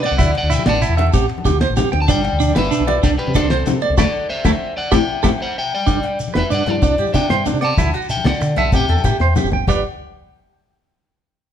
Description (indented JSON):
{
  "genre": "highlife guitar band",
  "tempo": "126 BPM (dotted quarters)",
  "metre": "12/8",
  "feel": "straight",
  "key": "G major",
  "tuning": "A4 = 444 Hz",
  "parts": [
    { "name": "electric guitar at the edge of break-up", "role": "melody", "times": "0.0-9.3 s", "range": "G4 to A5", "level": "-22 LUFS", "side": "left 2 dB", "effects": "spring reverb" },
    { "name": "fingerpicked steel-string acoustic guitar", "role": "accompaniment", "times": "0.0-9.8 s", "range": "F#3 to E4", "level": "-24 LUFS", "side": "left 6 dB", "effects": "none" },
    { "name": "clean electric guitar", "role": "arpeggios", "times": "0.0-9.8 s", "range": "D4 to G5", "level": "-21 LUFS", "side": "right 6 dB", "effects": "tremolo" },
    { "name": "cloth-damped thuddy drum kit", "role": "drums", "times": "0.0-9.8 s", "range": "crash cymbal, hi-hat, kick drum, ride cymbal, snare drum, toms", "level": "-20 LUFS", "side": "equal", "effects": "none" },
    { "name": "congas", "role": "percussion", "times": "0.0-9.8 s", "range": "none", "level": "-26 LUFS", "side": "left 5 dB", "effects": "none" },
    { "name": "fingered electric bass", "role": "bass", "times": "0.1-9.8 s", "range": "E1 to D3", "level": "-20 LUFS", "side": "equal", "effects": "none" },
    { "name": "agogo bells", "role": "percussion", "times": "0.2-9.8 s", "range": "none", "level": "-32 LUFS", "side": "left 9 dB", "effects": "none" },
    { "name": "shekere", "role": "percussion", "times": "0.2-9.8 s", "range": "none", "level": "-28 LUFS", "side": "equal", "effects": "none" }
  ],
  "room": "light reverb",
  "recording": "band playing live in one room",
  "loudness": "-15 LUFS",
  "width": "side -9 dB against mid",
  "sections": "0.0-5.9 A section; 5.9-9.7 B section; 9.7-11.5 C section",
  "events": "band accent 4.0-5.9; drum fill 5.4-5.9, 9.2-9.7",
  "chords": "0.2 Dadd9; 1.1 Am7; 2.1 G; 3.0 Csus2; 4.0 Dadd9; 4.9 Am7; 5.9 G; 6.8 Csus2; 7.8 Dadd9; 8.7 Am7; 9.7 G"
}